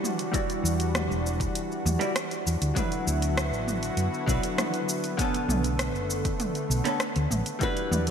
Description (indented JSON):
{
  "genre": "sunset chillout",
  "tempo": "99 BPM",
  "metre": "4/4",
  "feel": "straight",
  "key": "unclear",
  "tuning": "A4 = 440 Hz",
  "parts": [
    { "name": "vintage hollow-body jazz guitar", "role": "accompaniment", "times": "0.0-8.1 s", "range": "D3 to D5", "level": "-31 LUFS", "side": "equal", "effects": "auto-pan, vintage 12-bit sampler grit, low-pass filter, ping-pong delay" },
    { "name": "lush unison pad", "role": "sustained chords", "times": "0.0-8.1 s", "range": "D3 to F#5", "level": "-32 LUFS", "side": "equal", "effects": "chorus" },
    { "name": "deep house drum kit", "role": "drums", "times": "0.0-8.1 s", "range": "hi-hat, rim click, shaker, toms", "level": "-31 LUFS", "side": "right 1 dB", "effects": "overdrive, studio reverb" },
    { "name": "electronic kick drum", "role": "drums", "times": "0.3-7.7 s", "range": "none", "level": "-30 LUFS", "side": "equal", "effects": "overdrive, studio reverb" },
    { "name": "hollow-body short-scale fingered electric bass", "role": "bass", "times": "0.6-8.1 s", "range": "E1 to F#2", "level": "-28 LUFS", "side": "equal", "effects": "none" },
    { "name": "flamenco guitar", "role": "melody", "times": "7.6-8.1 s", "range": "B4", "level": "-30 LUFS", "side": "left 2 dB", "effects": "none" }
  ],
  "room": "moderate lush hall reverb, RT60 2.7 s",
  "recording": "bright 1980s-style digital production",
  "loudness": "-25 LUFS",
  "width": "side -7 dB against mid",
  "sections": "0.0-8.1 A section",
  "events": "filter sweep on hollow-body jazz guitar 0.0-8.1",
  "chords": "0.0 Em9; 2.8 D69; 5.2 Bm9",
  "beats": "| 0.34 0.95 1.55 2.16 | 2.77 3.37 3.98 4.58 | 5.19 5.79 6.40 7.01 | 7.61"
}